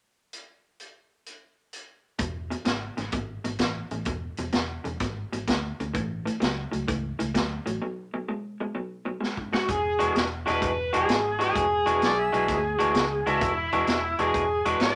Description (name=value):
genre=electric blues shuffle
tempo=128 BPM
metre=4/4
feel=swing 68% on 8ths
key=E mixolydian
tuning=A4 = 440 Hz
part: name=vintage drum kit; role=drums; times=0.3-15.0 s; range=hi-hat, kick drum, snare drum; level=-32 LUFS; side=equal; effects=none
part: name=electric guitar through a small old amp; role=riff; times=2.2-14.9 s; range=E2 to F#4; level=-31 LUFS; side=equal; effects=none
part: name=vintage muted fingered electric bass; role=bass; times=2.2-15.0 s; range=E1 to D2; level=-37 LUFS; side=equal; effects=none
part: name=lead guitar through a small cranked amp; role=melody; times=9.5-15.0 s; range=E4 to D5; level=-28 LUFS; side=equal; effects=overdrive
part: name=warm harmonica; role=second line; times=12.0-12.6 s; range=D5 to E5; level=-33 LUFS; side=equal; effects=none
room=moderate small room reverb, RT60 0.6 s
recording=none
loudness=-27 LUFS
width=mono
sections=0.3-2.2 A section; 2.2-9.7 B section; 9.7-15.0 C section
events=break 7.8-9.7; drum fill 9.2-9.7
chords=0.3 N.C.; 2.2 E; 5.9 A; 7.8 B5; 9.7 E9